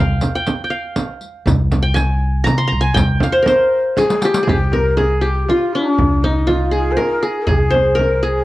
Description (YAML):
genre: Arabic maqam ensemble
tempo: 120 BPM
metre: 3/4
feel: straight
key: C maqam bayati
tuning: A4 = 442 Hz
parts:
  - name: qanun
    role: melody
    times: 0.0-8.4 s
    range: D4-50c to C6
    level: -17 LUFS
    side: equal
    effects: plate reverb
  - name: upright bass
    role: bass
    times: 0.0-8.4 s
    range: C2 to C3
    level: -18 LUFS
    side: equal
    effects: none
  - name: darbuka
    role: percussion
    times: 0.2-8.1 s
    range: none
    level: -25 LUFS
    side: equal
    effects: none
  - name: frame drum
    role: percussion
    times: 0.2-8.1 s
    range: none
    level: -21 LUFS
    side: right 2 dB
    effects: none
  - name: riq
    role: percussion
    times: 0.2-4.5 s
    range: none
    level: -25 LUFS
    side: left 3 dB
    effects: none
  - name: breathy ney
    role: second line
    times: 4.0-8.4 s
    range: D4-45c to C5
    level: -21 LUFS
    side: left 2 dB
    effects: none
room: moderate studio reverb, RT60 0.5 s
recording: worn, warbling old tape, cassette tape, warbly pitch drift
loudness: -14 LUFS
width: side -17 dB against mid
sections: 0.0-4.5 A section; 4.5-8.4 B section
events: drum fill 4.0-4.5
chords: none